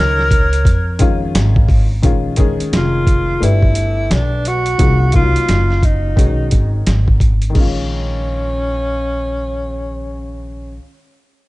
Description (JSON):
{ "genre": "hip hop, jazz-hop", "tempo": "87 BPM", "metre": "4/4", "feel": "swing 61% on 16ths", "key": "unclear", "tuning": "A4 = 439 Hz", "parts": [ { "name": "breathy tenor saxophone", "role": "melody", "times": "0.0-10.8 s", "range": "Db4 to Bb4", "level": "-20 LUFS", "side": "equal", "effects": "none" }, { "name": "breathy concert flute", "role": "second line", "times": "0.0-1.3 s", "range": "Db5", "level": "-28 LUFS", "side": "right 6 dB", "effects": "analog delay" }, { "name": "warm upright piano", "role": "accompaniment", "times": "0.0-10.8 s", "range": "Eb3 to B4", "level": "-23 LUFS", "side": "left 4 dB", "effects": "none" }, { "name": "upright bass", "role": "bass", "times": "0.0-10.8 s", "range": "F1 to F2", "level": "-17 LUFS", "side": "equal", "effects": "none" }, { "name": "boom bap sampler-style drum kit", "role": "drums", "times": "0.2-7.7 s", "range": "crash cymbal, hi-hat, kick drum, snare drum", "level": "-15 LUFS", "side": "equal", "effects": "none" } ], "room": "little or no reverb", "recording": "dark, warm production, nothing above 10.7 kHz", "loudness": "-12 LUFS", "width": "side -19 dB against mid", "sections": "0.0-2.0 A section; 2.0-7.6 B section; 7.6-10.3 C section", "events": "none", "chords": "0.0 Bbm7; 3.4 G; 4.8 Cm7b5; 6.2 B; 7.6 Bbm7" }